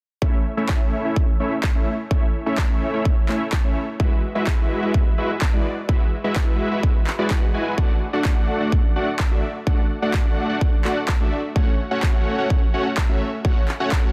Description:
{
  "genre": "EDM, festival progressive house",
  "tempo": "127 BPM",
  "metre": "4/4",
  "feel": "straight",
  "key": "A major",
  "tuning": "A4 = 440 Hz",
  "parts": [
    { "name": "supersaw chords", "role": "riff", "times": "0.2-14.1 s", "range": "G#3 to G#5", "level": "-26 LUFS", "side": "equal", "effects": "cassette tape, sidechain pumping, low-pass filter, digital delay" },
    { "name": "electronic kick drum", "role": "drums", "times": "0.2-14.0 s", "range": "none", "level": "-22 LUFS", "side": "equal", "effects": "none" },
    { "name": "electronic handclaps", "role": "drums", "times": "0.7-14.0 s", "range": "none", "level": "-32 LUFS", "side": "equal", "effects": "none" }
  ],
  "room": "little or no reverb",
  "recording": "dense, heavily limited modern master",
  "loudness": "-21 LUFS",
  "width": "mono",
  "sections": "0.2-14.1 A section",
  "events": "none",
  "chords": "0.2 A; 4.0 Eadd9; 7.8 D; 11.6 F#m",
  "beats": "| 0.22 0.69 1.17 1.64 | 2.11 2.58 3.05 3.53 | 4.00 4.47 4.94 5.42 | 5.89 6.36 6.83 7.31 | 7.78 8.25 8.72 9.20 | 9.67 10.14 10.61 11.09 | 11.56 12.03 12.50 12.98 | 13.45 13.92"
}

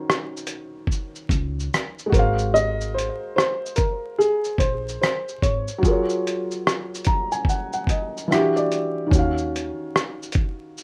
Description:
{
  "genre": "lo-fi hip hop",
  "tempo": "73 BPM",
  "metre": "4/4",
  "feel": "swing 62% on 16ths",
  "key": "Eb dorian",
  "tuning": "A4 = 443 Hz",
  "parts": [
    { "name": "dark upright piano", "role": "melody", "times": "0.0-7.8 s", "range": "Ab4 to Eb5", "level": "-25 LUFS", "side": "equal", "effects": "low-pass filter, analog delay, plate reverb" },
    { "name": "felt-muted upright piano", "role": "accompaniment", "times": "0.0-10.8 s", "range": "Eb3 to Bb5", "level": "-26 LUFS", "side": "equal", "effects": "low-pass filter, plate reverb" },
    { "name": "lo-fi sampler-style drum kit", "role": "drums", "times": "0.1-10.8 s", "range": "hi-hat, kick drum, rim click, shaker", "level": "-25 LUFS", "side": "equal", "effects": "none" },
    { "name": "upright bass", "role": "bass", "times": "1.3-9.7 s", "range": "Ab1 to Eb2", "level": "-29 LUFS", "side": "equal", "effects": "none" }
  ],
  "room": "moderate studio reverb, RT60 0.6 s",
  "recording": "rough home demo mix, vinyl crackle",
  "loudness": "-23 LUFS",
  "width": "mono",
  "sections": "0.0-10.8 A section",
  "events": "felt piano fill 6.6-9.1",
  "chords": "0.0 Ebm9; 2.1 Ab13; 5.8 Gbmaj9; 8.3 Em9; 9.1 Ebm9",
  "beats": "0.07 0.89 1.72 | 2.54 3.36 4.18 5.00 | 5.83 6.65 7.47 8.29 | 9.11 9.94 10.76"
}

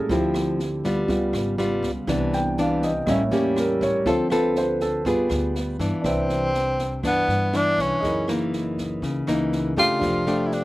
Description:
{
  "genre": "bossa nova",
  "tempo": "121 BPM",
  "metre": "4/4",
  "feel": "straight",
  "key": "C major",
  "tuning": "A4 = 440 Hz",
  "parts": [
    { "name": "nylon-string guitar", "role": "accompaniment", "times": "0.0-10.6 s", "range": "F#2 to A4", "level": "-24 LUFS", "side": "left 1 dB", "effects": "none" },
    { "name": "warm concert grand piano", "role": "accompaniment", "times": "0.0-10.6 s", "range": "E3 to G5", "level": "-25 LUFS", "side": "right 1 dB", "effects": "none" },
    { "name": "upright bass", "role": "bass", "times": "0.1-10.6 s", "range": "F1 to G2", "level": "-30 LUFS", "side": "equal", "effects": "none" },
    { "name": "open jazz drum kit", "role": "drums", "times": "0.1-10.6 s", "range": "kick drum, rim click, snare drum", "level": "-34 LUFS", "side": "right 1 dB", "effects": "none" },
    { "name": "breathy tenor saxophone", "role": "melody", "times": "6.1-10.6 s", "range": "B3 to F4", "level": "-22 LUFS", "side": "equal", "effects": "none" }
  ],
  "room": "little or no reverb",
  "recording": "recorded outdoors, with no room sound",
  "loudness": "-20 LUFS",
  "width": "side -18 dB against mid",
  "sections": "0.0-6.0 A section; 6.0-10.6 B section",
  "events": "grand piano solo 0.0-6.0",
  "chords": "0.1 Dm9; 1.1 Db7#11; 2.1 Cmaj9; 3.1 A7b9; 4.1 Dm7; 5.1 G7b9; 6.0 Cmaj9; 8.0 F#13; 10.0 F69",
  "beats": "| 0.10 0.59 1.09 1.58 | 2.08 2.58 3.07 3.57 | 4.06 4.56 5.05 5.55 | 6.04 6.54 7.04 7.53 | 8.03 8.53 9.02 9.52 | 10.01 10.51"
}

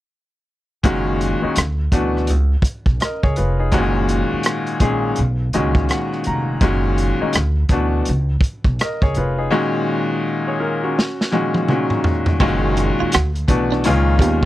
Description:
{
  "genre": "R&B, neo-soul",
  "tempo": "83 BPM",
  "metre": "4/4",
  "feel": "swing 62% on 16ths",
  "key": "F# major",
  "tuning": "A4 = 440 Hz",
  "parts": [
    { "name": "bright upright piano", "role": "accompaniment", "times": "0.8-14.5 s", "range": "G#2 to A#5", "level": "-19 LUFS", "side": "left 1 dB", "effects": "none" },
    { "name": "upright bass", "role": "bass", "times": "0.8-14.5 s", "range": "E#1 to D#2", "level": "-20 LUFS", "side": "equal", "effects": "none" },
    { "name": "crunchy breakbeat drum kit", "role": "drums", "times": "0.8-14.5 s", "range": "crash cymbal, hi-hat, kick drum, rim click, snare drum, toms", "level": "-18 LUFS", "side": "equal", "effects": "none" },
    { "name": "clean electric guitar", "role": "second line", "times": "12.4-14.4 s", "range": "B3 to F#4", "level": "-24 LUFS", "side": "right 8 dB", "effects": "lush chorus" }
  ],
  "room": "little or no reverb",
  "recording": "dry, close 1970s-style studio recording",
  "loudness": "-16 LUFS",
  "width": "side -15 dB against mid",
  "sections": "0.8-12.4 A section; 12.4-14.5 B section",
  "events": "upright piano fill 5.2-6.6; drum fill 11.0-12.4",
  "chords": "0.8 F#; 1.6 Dadd9; 2.3 C#7; 3.7 F#; 5.2 Bmaj9#11; 6.6 F#; 7.3 Dadd9; 8.1 C#7; 9.5 F#69/A#; 12.4 F#; 13.1 Dadd9; 13.8 C#7",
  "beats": "| 0.84 1.56 2.28 3.01 | 3.73 4.45 5.17 5.90 | 6.62 7.34 8.07 8.79 | 9.51 10.23 10.96 11.68 | 12.40 13.13 13.85"
}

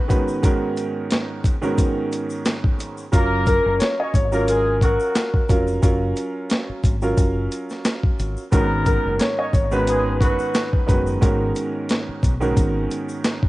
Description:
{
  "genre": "hip hop, boom-bap hip-hop",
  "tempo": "89 BPM",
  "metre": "4/4",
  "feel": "swing 55% on 16ths",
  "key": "G# dorian",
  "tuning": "A4 = 441 Hz",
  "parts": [
    { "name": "warm upright piano", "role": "melody", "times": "0.0-11.2 s", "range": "A#4 to D#5", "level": "-23 LUFS", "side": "left 1 dB", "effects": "high-pass filter, low-pass filter, analog delay" },
    { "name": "clear concert grand piano", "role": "accompaniment", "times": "0.1-13.5 s", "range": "G#2 to B4", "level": "-24 LUFS", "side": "right 2 dB", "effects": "cassette tape, high-pass filter, low-pass filter" },
    { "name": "dusty soul sampler-style drum kit", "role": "drums", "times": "0.1-13.5 s", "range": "hi-hat, kick drum, snare drum", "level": "-19 LUFS", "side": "equal", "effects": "overdrive, vintage 12-bit sampler grit, cassette tape" },
    { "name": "tube shaker", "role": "percussion", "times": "0.1-13.4 s", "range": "none", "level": "-44 LUFS", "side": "left 5 dB", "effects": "none" },
    { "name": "muted trumpet section", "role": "stabs", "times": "3.1-10.7 s", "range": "F#3 to C#5", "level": "-28 LUFS", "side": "left 1 dB", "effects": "high-pass filter, low-pass filter, cassette tape, analog delay" },
    { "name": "deep dub fingered electric bass", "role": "bass", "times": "3.1-12.9 s", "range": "E#1 to B1", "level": "-24 LUFS", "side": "equal", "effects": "none" }
  ],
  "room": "small room ambience",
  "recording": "home recording on cassette, nothing above 10.4 kHz",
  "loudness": "-18 LUFS",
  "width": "side -18 dB against mid",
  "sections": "0.0-13.5 A section",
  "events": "break 0.0-3.1",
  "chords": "0.0 G#m11; 3.1 F#maj9; 8.5 G#m11",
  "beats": "| 0.43 1.11 1.78 2.46 | 3.13 3.80 4.48 5.15 | 5.83 6.50 7.17 7.85 | 8.52 9.20 9.87 10.54 | 11.22 11.89 12.57 13.24"
}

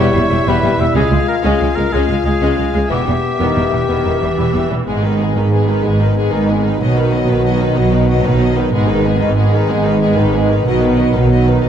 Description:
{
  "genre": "cinematic",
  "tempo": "124 BPM (dotted quarters)",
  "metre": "12/8",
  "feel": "straight",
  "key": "G# minor",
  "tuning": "A4 = 439 Hz",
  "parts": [
    { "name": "clear studio violin section", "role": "melody", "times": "0.0-11.7 s", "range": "G#4 to E#5", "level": "-25 LUFS", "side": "left 6 dB", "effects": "none" },
    { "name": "rich symphonic violin section", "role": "second line", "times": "0.0-11.7 s", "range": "G3 to D#4", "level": "-25 LUFS", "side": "left 3 dB", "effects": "none" },
    { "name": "warm oboe", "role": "second line", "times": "0.0-4.7 s", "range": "G4 to E5", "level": "-20 LUFS", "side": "equal", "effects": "none" },
    { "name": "rich symphonic viola section", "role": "accompaniment", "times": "0.0-11.7 s", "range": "D#3 to G#3", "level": "-21 LUFS", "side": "equal", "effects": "none" },
    { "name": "mellow French horn section", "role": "sustained chords", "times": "0.0-11.7 s", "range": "G3 to G4", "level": "-20 LUFS", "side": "left 3 dB", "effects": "none" },
    { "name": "rich studio cello section", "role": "bass", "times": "0.0-11.7 s", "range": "C#2 to B2", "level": "-18 LUFS", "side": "right 1 dB", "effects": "none" },
    { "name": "warm studio double bass section", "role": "bass", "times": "0.0-11.7 s", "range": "E1 to C#2", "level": "-18 LUFS", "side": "right 2 dB", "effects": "none" },
    { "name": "clear trombone section", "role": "sustained chords", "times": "4.9-11.7 s", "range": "D#3 to G#3", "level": "-22 LUFS", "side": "right 3 dB", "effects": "none" }
  ],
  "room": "moderate scoring stage reverb, RT60 1.6 s",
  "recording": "dark, warm production",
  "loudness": "-12 LUFS",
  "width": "side -9 dB against mid",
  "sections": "0.0-4.9 A section; 4.9-11.7 B section",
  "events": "none",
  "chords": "0.0 Em; 1.0 C#; 2.9 Em; 4.9 G#m; 6.8 B; 8.7 G#m; 10.7 B",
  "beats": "0.00 0.48 | 0.96 1.45 1.93 2.42 | 2.91 3.40 3.90 4.39 | 4.88 5.36 5.85 6.33 | 6.81 7.29 7.78 8.26 | 8.74 9.22 9.70 10.18 | 10.67 11.16 11.65"
}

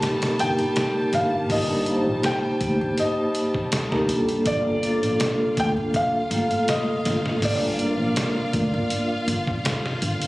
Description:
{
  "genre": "trip hop",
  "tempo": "81 BPM",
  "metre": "4/4",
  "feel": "swing 53% on 16ths",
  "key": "G minor",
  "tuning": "A4 = 439 Hz",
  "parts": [
    { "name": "felt-muted upright piano", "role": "melody", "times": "0.0-9.6 s", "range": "D5 to A5", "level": "-28 LUFS", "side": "equal", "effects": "tape echo" },
    { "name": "vibraphone with medium mallets", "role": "accompaniment", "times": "0.0-9.5 s", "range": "A3 to C5", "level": "-24 LUFS", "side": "equal", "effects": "tremolo, tape echo" },
    { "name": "warm symphonic violin section", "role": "sustained chords", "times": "0.0-10.3 s", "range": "G3 to A5", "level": "-32 LUFS", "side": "equal", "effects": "none" },
    { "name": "trip hop sampler-style drum kit", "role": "drums", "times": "0.0-10.3 s", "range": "hi-hat, kick drum, snare drum", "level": "-27 LUFS", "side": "equal", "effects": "none" },
    { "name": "upright bass", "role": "bass", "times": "0.4-10.3 s", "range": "G1 to G2", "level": "-29 LUFS", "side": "equal", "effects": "tube saturation" }
  ],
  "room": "small room reverb",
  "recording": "recorded on a phone in the room, club reverb, compression",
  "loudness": "-20 LUFS",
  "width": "side -19 dB against mid",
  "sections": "0.0-10.3 A section",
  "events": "none",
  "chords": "0.0 Eb/G; 4.5 Gm9",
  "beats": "0.02 0.76 | 1.50 2.24 2.98 3.73 | 4.47 5.21 5.95 6.69 | 7.43 8.17 8.91 9.65"
}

